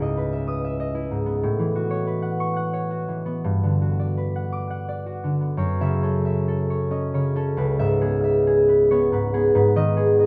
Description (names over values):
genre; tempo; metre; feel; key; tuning
classical, solo harp piece; 80-96 BPM; 3/4; rubato; F# minor; A4 = 440 Hz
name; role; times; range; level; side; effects
concert harp; solo; 0.0-10.3 s; C#2 to D#6; -22 LUFS; equal; none
room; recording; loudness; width
moderate stone room reverb, RT60 1.4 s; dark, warm production; -23 LUFS; mono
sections
0.0-5.6 A section; 5.6-10.3 B section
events
none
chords
0.0 C#m9; 1.4 A69; 3.4 Gmaj7; 5.6 F#m7; 7.6 C#m7; 9.6 G#m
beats
0.17 0.79 | 1.43 2.06 2.73 | 3.45 4.18 4.89 | 5.59 6.27 6.93 | 7.59 8.25 8.92 | 9.56 10.19